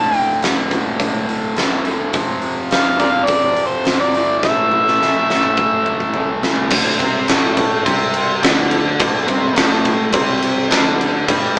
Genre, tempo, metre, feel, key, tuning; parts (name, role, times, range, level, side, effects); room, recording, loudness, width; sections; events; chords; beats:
blues rock power trio and southern rock; 105 BPM; 4/4; straight; D minor; A4 = 441 Hz
overdriven harmonica; melody; 0.0-6.4 s; Bb4 to A5; -16 LUFS; equal
cranked stack guitar; riff; 0.0-11.6 s; D2 to D4; -18 LUFS; equal; overdrive
growling fingered electric bass; bass; 0.0-11.5 s; D1 to D2; -26 LUFS; equal; overdrive
huge arena drum kit; drums; 0.1-11.6 s; crash cymbal, hi-hat, kick drum, snare drum, toms; -17 LUFS; equal
light reverb; band playing live in one room, small speaker sound; -13 LUFS; side -34 dB against mid
0.0-6.7 A section; 6.7-11.6 B section
drum fill 4.4-6.7
0.0 Dm; 2.1 F5; 4.1 Am; 6.7 D5
0.42 1.00 1.57 | 2.14 2.71 3.29 3.86 | 4.43 5.00 5.57 6.14 | 6.71 7.28 7.85 8.42 | 8.99 9.56 10.13 10.71 | 11.28